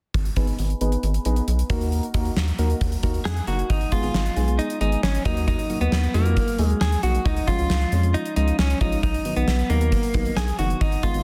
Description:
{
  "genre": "synth-pop",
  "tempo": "135 BPM",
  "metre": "4/4",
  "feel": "straight",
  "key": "unclear",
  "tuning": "A4 = 440 Hz",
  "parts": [
    { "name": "rubbery square bass", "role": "bass", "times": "0.1-11.2 s", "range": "Gb1 to F2", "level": "-25 LUFS", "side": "equal", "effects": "none" },
    { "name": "gated 80s drum kit", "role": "drums", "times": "0.1-11.2 s", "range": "hi-hat, kick drum, snare drum", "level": "-28 LUFS", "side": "equal", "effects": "none" },
    { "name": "soft electric-piano-like synth keys", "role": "accompaniment", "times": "0.4-11.2 s", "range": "D#3 to Gb5", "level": "-31 LUFS", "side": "equal", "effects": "chorus, low-pass filter" },
    { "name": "direct-recorded clean electric guitar", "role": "melody", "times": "3.3-11.2 s", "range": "Bb3 to Ab4", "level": "-28 LUFS", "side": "equal", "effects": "digital delay" }
  ],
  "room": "light reverb, studio reverb",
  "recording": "dense, heavily limited modern master",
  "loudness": "-22 LUFS",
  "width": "mono",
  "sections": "0.1-3.7 A section; 3.7-11.2 B section",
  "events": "filter sweep on synth keys 0.1-3.7; synth keys fill 3.0-3.7",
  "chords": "0.1 Abm; 1.7 Ebm; 3.7 Abm; 5.3 Ebm; 7.3 Db; 9.0 B",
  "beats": "| 0.14 0.59 1.03 1.48 | 1.92 2.37 2.81 3.25 | 3.70 4.14 4.59 5.03 | 5.48 5.92 6.37 6.81 | 7.25 7.70 8.14 8.59 | 9.03 9.48 9.92 10.37 | 10.81"
}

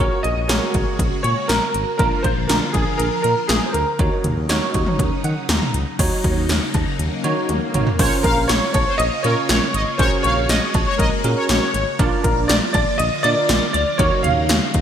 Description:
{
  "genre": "synth-pop",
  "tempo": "120 BPM",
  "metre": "4/4",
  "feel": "straight",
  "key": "Bb minor",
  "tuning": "A4 = 440 Hz",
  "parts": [
    { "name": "warm concert grand piano", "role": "melody", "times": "0.0-14.8 s", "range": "Ab4 to F5", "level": "-21 LUFS", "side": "equal", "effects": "ensemble chorus" },
    { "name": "bell-like tine electric piano", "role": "accompaniment", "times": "0.0-14.5 s", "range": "Db4 to Bb5", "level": "-25 LUFS", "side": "right 4 dB", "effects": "ensemble chorus" },
    { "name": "phased string machine", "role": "sustained chords", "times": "0.0-14.8 s", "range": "Db3 to Gb4", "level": "-27 LUFS", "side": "left 1 dB", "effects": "ensemble chorus, phaser" },
    { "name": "smooth synth bass", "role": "bass", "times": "0.0-14.8 s", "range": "Ab1 to Eb3", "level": "-23 LUFS", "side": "equal", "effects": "none" },
    { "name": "80s electronic pad drums", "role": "drums", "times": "0.2-14.8 s", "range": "cowbell, crash cymbal, hi-hat, kick drum, snare drum, toms", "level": "-20 LUFS", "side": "equal", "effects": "gated reverb on snare and toms, overdrive, gated reverb" },
    { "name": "swell", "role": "sound effects", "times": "6.9-8.0 s", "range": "none", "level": "-32 LUFS", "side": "left 2 dB", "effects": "none" },
    { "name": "analog synth brass", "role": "second line", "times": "8.0-11.8 s", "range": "Bb4 to F5", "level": "-24 LUFS", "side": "left 1 dB", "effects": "chorus, digital delay" }
  ],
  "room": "moderate lush hall reverb, RT60 1.7 s",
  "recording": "bright 1980s-style digital production",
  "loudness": "-16 LUFS",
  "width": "side -9 dB against mid",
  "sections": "0.0-6.0 A section; 6.0-8.0 B section; 8.0-14.8 C section",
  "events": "tine electric piano fill 5.0-6.0; swell 6.9-8.0; drum fill 7.5-8.0",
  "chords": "0.0 Gbadd9/Bb; 2.0 Bb; 4.0 Ebm7; 8.0 Bbmadd9; 10.0 Gbadd9/Bb; 12.0 Bb; 14.0 Ebm7",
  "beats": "0.49 0.99 1.49 | 1.99 2.49 2.99 3.49 | 3.99 4.49 4.99 5.49 | 5.99 6.49 6.99 7.49 | 7.99 8.49 8.99 9.49 | 9.99 10.49 10.99 11.49 | 11.99 12.49 12.99 13.49 | 13.99 14.49"
}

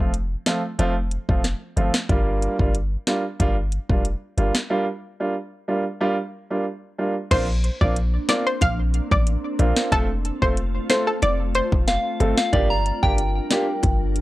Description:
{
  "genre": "dancehall",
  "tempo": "92 BPM",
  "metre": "4/4",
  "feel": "straight",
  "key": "Bb major",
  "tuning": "A4 = 440 Hz",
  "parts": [
    { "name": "warm grand piano", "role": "accompaniment", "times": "0.0-13.6 s", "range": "F3 to A4", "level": "-24 LUFS", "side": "right 2 dB", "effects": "none" },
    { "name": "warm 808-style bass", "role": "bass", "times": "0.0-14.2 s", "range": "F1 to Bb1", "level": "-22 LUFS", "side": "equal", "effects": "none" },
    { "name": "afro-pop drum kit", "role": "drums", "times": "0.1-14.2 s", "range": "crash cymbal, hi-hat, kick drum, snare drum", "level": "-23 LUFS", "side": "equal", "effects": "none" },
    { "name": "analog pluck", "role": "melody", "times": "7.3-11.7 s", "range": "A4 to F5", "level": "-24 LUFS", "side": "left 1 dB", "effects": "chorus, analog delay" },
    { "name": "glassy FM pad", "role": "sustained chords", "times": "8.1-14.2 s", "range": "G3 to Bb4", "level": "-31 LUFS", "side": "equal", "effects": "ensemble chorus, built-in reverb, sidechain pumping" },
    { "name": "bongos", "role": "percussion", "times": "7.3-14.0 s", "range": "none", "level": "-32 LUFS", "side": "left 3 dB", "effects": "none" },
    { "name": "soft synth bell", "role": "second line", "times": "11.9-14.2 s", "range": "D5 to Bb5", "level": "-24 LUFS", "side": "equal", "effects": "chorus, phaser, analog delay" }
  ],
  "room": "digital ambience",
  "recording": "dry, gritty hardware recording, cassette tape",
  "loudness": "-20 LUFS",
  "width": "side -17 dB against mid",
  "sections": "0.0-7.3 A section; 7.3-14.2 B section",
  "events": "break 4.7-7.3",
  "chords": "0.0 F; 2.1 Gm7; 7.3 Bbadd9; 9.9 F; 12.5 Gm7",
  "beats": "0.14 0.79 1.44 | 2.10 2.75 3.40 4.05 | 4.70 5.36 6.01 6.66 | 7.31 7.96 8.62 9.27 | 9.92 10.57 11.22 11.88 | 12.53 13.18 13.83"
}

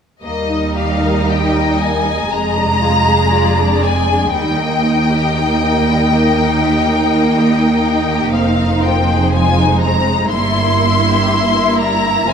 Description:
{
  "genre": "classical, slow romantic movement for string orchestra",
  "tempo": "60 BPM",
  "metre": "4/4",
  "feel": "rubato",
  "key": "Eb major",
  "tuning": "A4 = 440 Hz",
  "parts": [
    { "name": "warm symphonic violin section", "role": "melody", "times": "0.2-12.3 s", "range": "Eb5 to C6", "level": "-17 LUFS", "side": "left 4 dB", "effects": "none" },
    { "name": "warm symphonic violin section", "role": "second line", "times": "0.2-12.3 s", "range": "G3 to E5", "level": "-20 LUFS", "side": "left 3 dB", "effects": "none" },
    { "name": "warm symphonic viola section", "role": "accompaniment", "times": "0.2-12.3 s", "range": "G3 to Ab4", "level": "-17 LUFS", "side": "right 2 dB", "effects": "none" },
    { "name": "warm symphonic cello section", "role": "bass", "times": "0.2-12.3 s", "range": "Eb2 to G2", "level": "-20 LUFS", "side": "right 2 dB", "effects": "none" },
    { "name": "warm symphonic double bass section", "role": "bass", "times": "0.2-12.3 s", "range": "F1 to Eb2", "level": "-21 LUFS", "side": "right 4 dB", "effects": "none" }
  ],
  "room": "wet recital hall reverb, RT60 1.6 s",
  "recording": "minimal, uncompressed stereo recording",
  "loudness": "-12 LUFS",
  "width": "side -7 dB against mid",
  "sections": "0.2-12.3 A section",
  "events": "none",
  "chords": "0.2 Eb; 2.3 Ddim/F; 4.3 Eb; 8.3 Fm7; 10.3 Edim/G",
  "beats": "| 0.23 1.28 2.31 3.33 | 4.34 5.36 6.36 7.36 | 8.34 9.33 10.32 11.30 | 12.27"
}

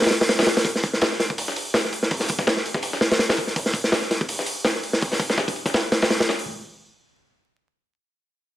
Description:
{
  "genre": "drum and bass, jungle",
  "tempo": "165 BPM",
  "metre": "4/4",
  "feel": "swing 55% on 16ths",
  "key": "none",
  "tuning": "none",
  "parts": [
    { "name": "crunchy breakbeat drum kit", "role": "drums", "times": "0.0-6.5 s", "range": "hi-hat, kick drum, snare drum", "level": "-20 LUFS", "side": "equal", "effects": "high-pass filter on kick, high-pass filter on hats, high-pass filter on snare, high-pass filter on room" },
    { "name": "dusty soul sampler-style drum kit", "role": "drums", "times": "0.0-6.4 s", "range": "hi-hat, snare drum", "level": "-28 LUFS", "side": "left 2 dB", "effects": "high-pass filter on hats, low-pass filter on hats, high-pass filter on snare, low-pass filter on snare, high-pass filter on room, low-pass filter on room" }
  ],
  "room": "light reverb",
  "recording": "vinyl crackle",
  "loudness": "-20 LUFS",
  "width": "side -14 dB against mid",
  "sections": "0.0-6.5 A section; 6.5-8.6 B section",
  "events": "none",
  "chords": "none",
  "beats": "0.29 | 0.65 1.01 1.38 1.74 | 2.11 2.47 2.83 3.20 | 3.56 3.92 4.29 4.65 | 5.01 5.38 5.74 6.11"
}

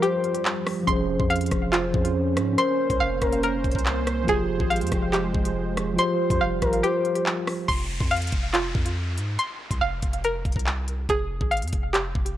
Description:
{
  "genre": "hip hop, drill",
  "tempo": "141 BPM",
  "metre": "4/4",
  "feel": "half-time",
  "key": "F minor",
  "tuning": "A4 = 440 Hz",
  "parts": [
    { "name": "gliding portamento lead", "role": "second line", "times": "0.0-3.4, 6.0-7.2 s", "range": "Bb4 to C5", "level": "-27 LUFS", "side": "left 3 dB", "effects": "chorus, analog delay" },
    { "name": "mellow tine electric piano", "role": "accompaniment", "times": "0.0-7.7 s", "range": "F3 to C5", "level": "-27 LUFS", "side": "equal", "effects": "medium stereo tremolo, low-pass filter" },
    { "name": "dark analog pad", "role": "sustained chords", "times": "0.0-7.7 s", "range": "F3 to G5", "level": "-31 LUFS", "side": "right 4 dB", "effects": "chorus" },
    { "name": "string-like resonator pluck", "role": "arpeggios", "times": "0.0-12.4 s", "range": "F4 to C6", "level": "-27 LUFS", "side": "right 1 dB", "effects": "chorus, low-pass filter, analog delay" },
    { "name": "drill drum kit", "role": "drums", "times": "0.0-12.4 s", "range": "handclaps, hi-hat, kick drum, rim click", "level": "-27 LUFS", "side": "equal", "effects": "none" },
    { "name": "long sustained 808-style bass", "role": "bass", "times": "0.9-12.4 s", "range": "E1 to Ab2", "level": "-29 LUFS", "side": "equal", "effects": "none" },
    { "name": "downlifter", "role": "sound effects", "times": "7.7-11.1 s", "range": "none", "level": "-37 LUFS", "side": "equal", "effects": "none" }
  ],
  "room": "light reverb, digital ambience",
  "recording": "dry, gritty hardware recording, transformer saturation, cassette tape, faint mains hum",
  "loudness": "-22 LUFS",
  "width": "side -12 dB against mid",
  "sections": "0.0-7.7 A section; 7.7-12.4 B section",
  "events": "break 0.0-0.9, 6.8-7.7",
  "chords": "0.0 Csus4/F; 0.9 Dbmaj7/F; 2.6 Bbmadd9/F; 4.3 Fmadd9; 6.0 Csus4/F; 7.7 F5; 9.4 Bbsus2/F; 11.1 Fmadd9",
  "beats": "0.03 0.45 | 0.88 1.30 1.73 2.15 | 2.58 3.00 3.43 3.86 | 4.28 4.71 5.13 5.56 | 5.98 6.41 6.83 7.26 | 7.68 8.11 8.54 8.96 | 9.39 9.81 10.24 10.66 | 11.09 11.52 11.94 12.37"
}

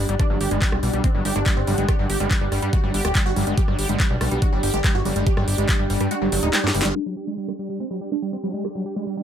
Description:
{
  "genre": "psychedelic trance",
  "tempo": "142 BPM",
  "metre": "4/4",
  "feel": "straight",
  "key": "unclear",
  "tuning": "A4 = 440 Hz",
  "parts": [
    { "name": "swarming drone", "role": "sustained chords", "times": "0.0-9.2 s", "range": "D4", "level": "-32 LUFS", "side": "right 1 dB", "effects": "built-in reverb, sidechain pumping" },
    { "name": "screaming distorted acid line", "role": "riff", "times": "0.0-9.2 s", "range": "F#3 to G4", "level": "-29 LUFS", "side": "moving between left 3 dB and right 3 dB", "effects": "distortion, chorus, auto-pan, sidechain pumping, digital delay" },
    { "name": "fat analog bass", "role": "bass", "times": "0.0-6.9 s", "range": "D1 to G2", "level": "-24 LUFS", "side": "equal", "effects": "none" },
    { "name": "warbly tape-like pad", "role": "texture", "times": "0.0-9.2 s", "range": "G4 to G5", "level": "-31 LUFS", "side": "right 1 dB", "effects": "chorus, built-in reverb, sidechain pumping" },
    { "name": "drum and bass drum kit", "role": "drums", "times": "0.1-8.7 s", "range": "handclaps, hi-hat, rim click, snare drum", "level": "-26 LUFS", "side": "equal", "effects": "overdrive" },
    { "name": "supersaw stab", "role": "melody", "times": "0.2-9.2 s", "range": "G3 to G4", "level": "-28 LUFS", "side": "right 2 dB", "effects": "phaser, sidechain pumping, dub echo" },
    { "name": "electronic kick drum", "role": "drums", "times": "0.2-5.8 s", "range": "none", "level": "-20 LUFS", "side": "equal", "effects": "overdrive" }
  ],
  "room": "little or no reverb",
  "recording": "low-pass filter",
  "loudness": "-19 LUFS",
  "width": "side -9 dB against mid",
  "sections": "0.0-7.0 A section; 7.0-9.2 B section",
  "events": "kick drops out 6.1-7.0; drum fill 6.5-7.0; band accent 6.8; filter sweep 7.0-9.2",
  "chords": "0.0 G5",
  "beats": "| 0.20 0.62 1.04 1.46 | 1.89 2.31 2.73 3.15 | 3.58 4.00 4.42 4.84 | 5.27 5.69 6.11 6.53 | 6.96 7.38 7.80 8.22 | 8.65 9.07"
}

